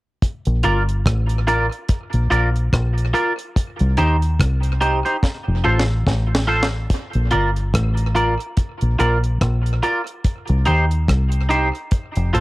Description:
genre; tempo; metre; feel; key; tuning
roots reggae; 72 BPM; 4/4; swing 57% on 16ths; Bb major; A4 = 440 Hz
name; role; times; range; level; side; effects
deep reggae drum kit; drums; 0.2-12.4 s; hi-hat, kick drum, rim click, snare drum; -21 LUFS; equal; tape echo
deep dub fingered electric bass; bass; 0.5-12.4 s; F1 to Eb2; -18 LUFS; equal; none
twangy electric guitar; accompaniment; 0.6-12.4 s; Eb4 to D5; -21 LUFS; right 1 dB; analog chorus, tape echo
room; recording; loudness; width
little or no reverb; home recording on cassette; -17 LUFS; side -19 dB against mid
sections
0.2-6.9 A section; 6.9-12.4 B section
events
drum fill 5.2-6.9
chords
0.2 Bb; 3.6 Cm; 5.2 F; 6.9 Bb; 10.2 Cm

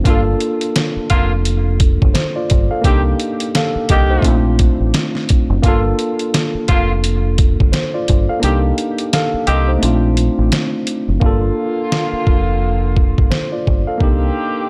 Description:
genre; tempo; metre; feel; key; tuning
hip hop, boom-bap hip-hop; 86 BPM; 4/4; swing 60% on 16ths; G minor; A4 = 441 Hz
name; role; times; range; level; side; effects
tine electric piano; accompaniment; 0.0-14.7 s; A3 to F5; -22 LUFS; equal; cassette tape
deep dub fingered electric bass; bass; 0.0-14.3 s; F1 to C2; -19 LUFS; equal; none
warm saxophone section; stabs; 0.1-14.7 s; D3 to G4; -25 LUFS; equal; analog delay
trip hop sampler-style drum kit; drums; 0.1-14.2 s; hi-hat, kick drum, snare drum; -18 LUFS; equal; none
room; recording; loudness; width
little or no reverb; none; -16 LUFS; mono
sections
0.0-11.2 A section; 11.2-14.7 B section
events
kick muted 8.4-11.2; hi-hats muted 11.2-14.7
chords
0.1 Gm7; 2.8 Cm7; 4.2 Bbmaj7; 5.6 Gm7; 8.4 Cm7; 9.8 Bbmaj7; 11.2 Gm7; 14.0 Cm7

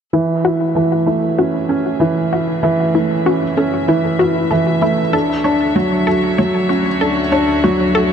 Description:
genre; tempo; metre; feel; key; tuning
electronica; 96 BPM; 4/4; straight; F# minor; A4 = 440 Hz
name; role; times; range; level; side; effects
warm chamber string section; sustained chords; 0.1-8.1 s; D2 to E5; -24 LUFS; left 2 dB; none
wide unison pluck; arpeggios; 0.1-8.0 s; E4 to C#5; -20 LUFS; left 3 dB; ping-pong delay
felt-muted upright piano; riff; 0.1-8.1 s; E3 to F#4; -15 LUFS; right 2 dB; low-pass filter, ping-pong delay
room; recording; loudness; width
moderate huge ambient reverb, RT60 5.0 s; none; -13 LUFS; side -7 dB against mid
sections
0.1-8.1 A section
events
fade-in on string section 0.1-8.1; filter sweep on felt piano 0.1-8.1; filter sweep on synth arpeggio sound 0.1-8.1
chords
0.1 F#m7; 5.1 Dmaj7

